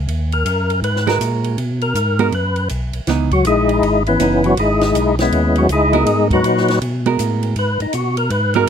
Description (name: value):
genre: soul jazz organ trio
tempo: 161 BPM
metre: 4/4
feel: swing 64% on 8ths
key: G# minor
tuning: A4 = 440 Hz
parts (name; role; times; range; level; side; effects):
- tonewheel organ; bass; 0.0-8.7 s; F#1 to B2; -19 LUFS; equal; slow rotary speaker
- compact cocktail drum kit; drums; 0.1-8.6 s; hi-hat, kick drum, ride cymbal, snare drum; -28 LUFS; right 1 dB; none
- percussive tonewheel organ; melody; 0.3-8.7 s; E3 to B4; -16 LUFS; left 2 dB; slow rotary speaker, overdrive, chorus vibrato
- hollow-body jazz guitar; accompaniment; 1.1-8.7 s; E3 to A#4; -19 LUFS; right 9 dB; none
room: little or no reverb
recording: close, detailed microphones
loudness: -14 LUFS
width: side -8 dB against mid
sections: 0.0-8.7 A section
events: tonewheel organ solo 0.0-8.7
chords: 0.0 G#m9; 3.1 C#m9; 6.1 G#m9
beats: | 0.08 0.46 0.83 1.21 | 1.58 1.95 2.33 2.70 | 3.08 3.45 3.82 4.20 | 4.57 4.94 5.32 5.69 | 6.06 6.44 6.81 7.18 | 7.56 7.93 8.30 8.68